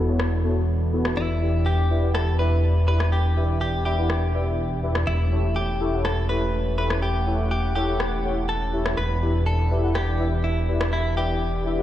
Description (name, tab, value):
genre	progressive house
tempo	123 BPM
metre	4/4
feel	straight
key	E dorian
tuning	A4 = 440 Hz
part	warm analog pad	sustained chords	0.0-11.8 s	E3 to F#5	-32 LUFS	right 2 dB	lush chorus
part	soft supersaw	stabs	0.0-11.8 s	B3 to F#5	-28 LUFS	left 2 dB	low-pass filter, tape echo
part	fat analog bass	bass	0.0-11.8 s	E1	-23 LUFS	equal	none
part	electronic rim click	drums	0.2-10.9 s	none	-34 LUFS	left 1 dB	overdrive, low-pass filter on snare, low-pass filter on room
part	direct-recorded clean electric guitar	melody	1.2-11.8 s	E4 to B4	-28 LUFS	left 1 dB	analog chorus, digital delay
room	little or no reverb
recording	played on a big sound system in a bare room, large studio reverb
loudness	-21 LUFS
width	side -12 dB against mid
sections	0.0-11.8 A section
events	none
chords	0.0 B7sus4/E; 1.2 Em7; 5.1 A7/E; 9.0 Em7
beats	0.20 0.68 | 1.17 1.66 2.15 2.63 | 3.12 3.61 4.10 4.58 | 5.07 5.56 6.05 6.54 | 7.02 7.51 8.00 8.49 | 8.97 9.46 9.95 10.44 | 10.93 11.41